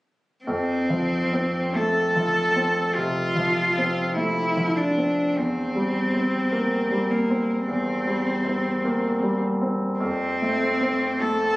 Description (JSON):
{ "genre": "classical, romantic duo for cello and grand piano", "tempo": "45-52 BPM", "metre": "4/4", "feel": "rubato", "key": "F major", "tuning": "A4 = 439 Hz", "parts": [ { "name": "rich cello", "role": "melody", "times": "0.4-11.6 s", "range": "Bb3 to A4", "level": "-23 LUFS", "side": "equal", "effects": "none" }, { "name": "bright concert grand piano", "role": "accompaniment", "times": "0.5-11.6 s", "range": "E2 to C4", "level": "-24 LUFS", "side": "equal", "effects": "none" } ], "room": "moderate recital hall reverb, RT60 1.3 s", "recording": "recorded on a phone in the room, club reverb, compression", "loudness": "-21 LUFS", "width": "side -19 dB against mid", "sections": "0.5-11.6 A section", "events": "none", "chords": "0.5 F; 5.4 C7/E; 10.0 F" }